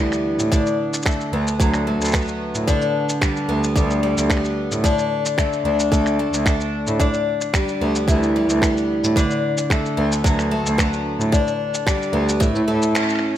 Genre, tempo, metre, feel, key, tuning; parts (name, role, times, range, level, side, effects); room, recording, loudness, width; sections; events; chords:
folktronica; 111 BPM; 4/4; straight; A4 = 436 Hz
picked twelve-string acoustic guitar; arpeggios; 0.0-13.4 s; A2 to D4; -21 LUFS; left 1 dB; tape echo
electronic finger snaps and shaker; drums; 0.1-13.2 s; -26 LUFS; equal; small room ambience
rich cello; bass; 0.4-12.9 s; D2 to A2; -23 LUFS; right 1 dB
electronic kick drum; drums; 0.5-12.5 s; -21 LUFS; equal; small room ambience
light reverb, small room ambience; -17 LUFS; side -11 dB against mid
0.0-13.4 A section
band accent 13.0
0.0 Em/D; 0.5 Bm7/D; 2.7 G/D; 4.8 D5; 7.0 Em/D; 9.2 Bm7/D; 11.3 G/D; 12.4 A